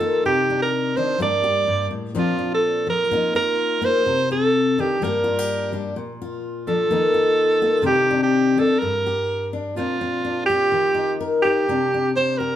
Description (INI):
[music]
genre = highlife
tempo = 126 BPM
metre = 4/4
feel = straight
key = Bb major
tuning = A4 = 442 Hz
[part]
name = bright alto saxophone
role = melody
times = 0.0-12.6 s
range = F4 to D5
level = -20 LUFS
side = right 2 dB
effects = none
[part]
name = fingerpicked steel-string acoustic guitar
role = accompaniment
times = 0.0-12.6 s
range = G2 to Bb4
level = -23 LUFS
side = left 4 dB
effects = none
[sound]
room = moderate large studio reverb, RT60 0.8 s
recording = band playing live in one room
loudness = -18 LUFS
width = side -11 dB against mid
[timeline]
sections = 0.0-9.8 A section; 9.8-12.6 B section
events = none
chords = 0.2 Cmadd9; 1.2 Gm; 2.2 Bbadd9; 3.1 Ebsus2; 4.1 Cmadd9; 5.0 Gm; 6.0 Bb; 6.9 Ebsus2; 7.9 Cmadd9; 8.8 Gm; 9.8 Bbadd9; 10.7 Ebadd9; 11.7 Csus2